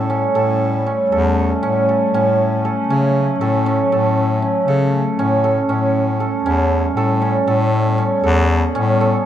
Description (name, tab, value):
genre	contemporary instrumental, chamber music in an uneven meter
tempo	236 BPM (eighths)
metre	7/8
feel	straight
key	A mixolydian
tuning	A4 = 438 Hz
part	warbly tape-like pad	sustained chords	0.0-9.2 s	F#3 to C#4	-21 LUFS	left 3 dB	chorus, built-in reverb
part	cimbalom	arpeggios	0.0-9.3 s	C#4 to A4	-18 LUFS	right 3 dB	none
part	clear bass clarinet	bass	0.0-9.2 s	E2 to C#3	-19 LUFS	left 2 dB	none
room	light reverb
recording	close, detailed microphones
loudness	-14 LUFS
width	side -10 dB against mid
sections	0.0-9.3 A section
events	none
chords	0.0 A7; 2.1 F#m/A; 5.7 A7